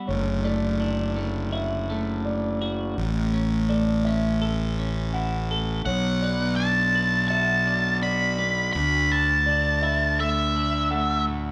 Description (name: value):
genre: rock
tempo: 83 BPM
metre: 4/4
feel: straight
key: D major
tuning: A4 = 440 Hz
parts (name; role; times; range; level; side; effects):
- felt-muted upright piano; arpeggios; 0.0-11.5 s; C#5 to F#5; -35 LUFS; equal; none
- twelve-string electric guitar; arpeggios; 0.0-11.5 s; D2 to B4; -31 LUFS; equal; spring reverb
- fuzz fingered electric bass; bass; 0.1-11.5 s; F#1 to D2; -28 LUFS; equal; overdrive
- octave-fuzz lead guitar; melody; 5.9-11.2 s; E5 to B5; -25 LUFS; equal; distortion
room: moderate large studio reverb, RT60 1.2 s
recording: band playing live in one room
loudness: -24 LUFS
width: mono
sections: 0.0-5.9 A section; 5.9-11.5 B section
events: none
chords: 0.1 Dmaj7/F#; 3.0 A; 5.9 Bm7; 8.7 Dadd9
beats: | 0.07 0.80 1.52 2.25 | 2.97 3.69 4.41 5.14 | 5.86 6.58 7.30 8.03 | 8.75 9.47 10.19 10.91